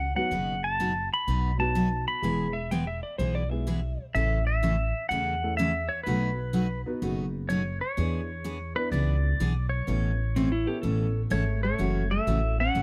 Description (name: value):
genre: country, western swing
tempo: 126 BPM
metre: 4/4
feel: swing 67% on 8ths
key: A major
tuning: A4 = 441 Hz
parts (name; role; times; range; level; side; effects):
- pedal steel guitar; melody; 0.0-12.8 s; B4 to B5; -32 LUFS; equal; none
- upright bass; bass; 0.0-12.8 s; E1 to E2; -31 LUFS; equal; none
- warm upright piano; accompaniment; 0.2-12.6 s; F#3 to B4; -37 LUFS; equal; none
- picked steel-string acoustic guitar; accompaniment; 0.3-12.8 s; B2 to A4; -32 LUFS; equal; none
- clean lap steel guitar; second line; 2.5-4.1, 10.4-11.2 s; C4 to G5; -34 LUFS; equal; none
- hollow-body jazz guitar; second line; 11.3-12.8 s; A3 to C#4; -35 LUFS; equal; none
room: little or no reverb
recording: none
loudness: -28 LUFS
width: mono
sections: 0.0-12.8 A section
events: none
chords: 0.3 B/F#; 2.2 E; 4.1 A; 6.1 B7; 8.0 E7; 9.9 Aadd9; 11.8 F#m7